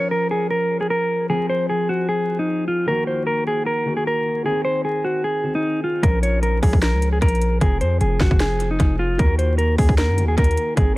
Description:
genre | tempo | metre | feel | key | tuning
hip hop, trap | 152 BPM | 4/4 | half-time | Bb minor | A4 = 442 Hz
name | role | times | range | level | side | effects
mellow electric guitar | melody | 0.0-11.0 s | Eb4 to Db5 | -21 LUFS | equal | low-pass filter, analog delay
dark baby grand piano | accompaniment | 0.0-11.0 s | Eb3 to Bb4 | -26 LUFS | left 1 dB | low-pass filter, analog delay
hard-hitting 808-style bass | bass | 6.0-11.0 s | F1 to Gb2 | -20 LUFS | equal | none
trap drum kit | drums | 6.0-10.9 s | hi-hat, kick drum, snare drum | -19 LUFS | equal | none
room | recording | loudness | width
little or no reverb | echo-heavy mix, vinyl crackle | -17 LUFS | side -19 dB against mid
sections
0.0-11.0 A section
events
none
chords
0.0 Bbm; 1.3 Fm; 2.9 Ebm; 4.5 Ab; 6.0 Bbm; 7.6 Fm; 9.2 Ebm

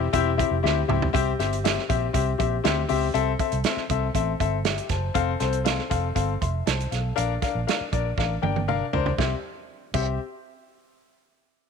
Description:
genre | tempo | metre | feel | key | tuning
uptempo 1960s-style soul | 119 BPM | 4/4 | straight | C mixolydian | A4 = 440 Hz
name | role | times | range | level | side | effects
warm baby grand piano | accompaniment | 0.0-10.2 s | C4 to C6 | -26 LUFS | left 12 dB | none
vintage muted fingered electric bass | bass | 0.0-10.2 s | E1 to D2 | -27 LUFS | right 2 dB | none
warm soul drum kit | drums | 0.1-10.1 s | crash cymbal, hi-hat, kick drum, snare drum, toms | -27 LUFS | right 7 dB | none
room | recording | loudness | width
light reverb | 1960s-style stereo with parts hard left and right | -22 LUFS | side -6 dB against mid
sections
0.0-1.1 A section; 1.1-9.2 B section; 9.2-11.2 C section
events
drum fill 0.6-1.1, 8.2-9.2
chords
0.0 C; 3.1 Am/C; 5.2 F; 7.2 Bb; 9.2 C

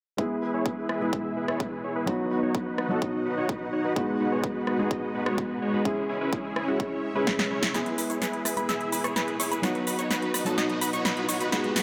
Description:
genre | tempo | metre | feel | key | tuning
EDM, festival progressive house | 127 BPM | 4/4 | straight | E major | A4 = 436 Hz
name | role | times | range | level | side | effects
dark concert grand piano | accompaniment | 0.2-11.8 s | F#3 to G#4 | -33 LUFS | equal | sidechain pumping, delay
supersaw pad | sustained chords | 0.6-11.8 s | G#3 to B5 | -37 LUFS | equal | sidechain pumping, low-pass filter
dense compressed supersaw | riff | 0.2-11.8 s | G#3 to E5 | -33 LUFS | equal | sidechain pumping, low-pass filter, delay
electronic kick drum | drums | 0.2-7.4 s | none | -34 LUFS | equal | high-pass filter on kick
big-room dance drum kit | drums | 0.9-11.8 s | hi-hat, rim click, shaker, snare drum | -32 LUFS | equal | none
unison pluck | arpeggios | 7.7-11.8 s | A5 to E6 | -36 LUFS | equal | sidechain pumping, delay
fat analog bass | bass | 7.7-11.8 s | none | barely audible | none | none
riser | sound effects | 9.4-11.8 s | none | -42 LUFS | equal | none
room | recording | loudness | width
moderate lush hall reverb, RT60 2.0 s | none | -28 LUFS | mono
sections
0.2-7.7 A section; 7.7-11.8 B section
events
filter sweep on supersaw synth 0.2-7.7, 7.7-11.8; drum fill 7.3-7.7, 7.7-11.8; build-up 7.7-11.8; filter sweep on synth pluck 7.7-11.8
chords
0.2 E; 2.1 B; 4.0 G#m7; 5.9 C#m; 7.7 E; 9.6 B

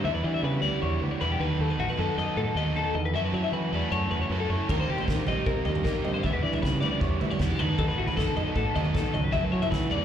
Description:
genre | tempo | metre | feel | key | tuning
math rock and midwest emo | 155 BPM | 4/4 | straight | unclear | A4 = 436 Hz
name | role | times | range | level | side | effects
direct-recorded clean electric guitar | accompaniment | 0.0-10.0 s | Bb2 to D5 | -33 LUFS | right 6 dB | slapback echo
twelve-string electric guitar | arpeggios | 0.0-10.0 s | F#4 to E5 | -30 LUFS | left 7 dB | slapback echo
overdriven electric guitar | riff | 0.0-10.0 s | F#2 to A4 | -32 LUFS | right 1 dB | slapback echo
growling fingered electric bass | bass | 0.0-10.0 s | A1 to F#3 | -29 LUFS | equal | overdrive
loose indie drum kit | drums | 4.7-10.0 s | crash cymbal, kick drum, snare drum, toms | -30 LUFS | right 1 dB | none
room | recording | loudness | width
small room ambience | live gig heard through the venue's PA, club reverb | -24 LUFS | side -9 dB against mid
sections
0.0-10.0 A section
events
none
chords
0.0 Em7; 1.4 B7; 3.1 F#m7; 4.7 Eb6; 6.2 Em7; 7.6 B7; 9.3 F#m7

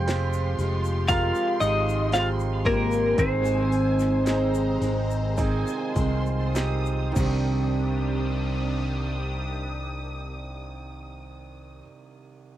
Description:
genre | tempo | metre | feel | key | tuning
pop ballad | 49-60 BPM | 4/4 | straight | C minor | A4 = 442 Hz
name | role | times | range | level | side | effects
twelve-string electric guitar | melody | 0.0-6.5 s | Bb3 to G5 | -25 LUFS | left 1 dB | cassette tape, analog delay
dark studio violin section | second line | 0.0-11.8 s | Ab5 to Eb6 | -38 LUFS | equal | cassette tape, analog delay
warm concert grand piano | accompaniment | 0.0-12.6 s | C2 to C5 | -33 LUFS | right 7 dB | cassette tape
sweeping resonant pad | sustained chords | 0.0-11.8 s | C3 to C5 | -38 LUFS | left 1 dB | chorus, cassette tape
picked steel-string acoustic guitar | arpeggios | 0.0-11.9 s | Ab2 to Ab4 | -33 LUFS | right 3 dB | cassette tape, analog delay
fingered electric bass | bass | 0.0-11.8 s | F1 to C2 | -27 LUFS | left 1 dB | none
house drum kit | drums | 0.1-7.4 s | crash cymbal, hi-hat, kick drum, snare drum | -29 LUFS | left 1 dB | cassette tape
egg shaker | percussion | 0.1-8.3 s | none | -45 LUFS | left 13 dB | none
room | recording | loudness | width
little or no reverb | home recording on cassette | -22 LUFS | side -12 dB against mid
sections
0.0-7.8 A section; 7.8-12.6 B section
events
slowing down 0.0-7.8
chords
0.0 Fmadd9; 3.2 Ab; 7.2 Cmadd9

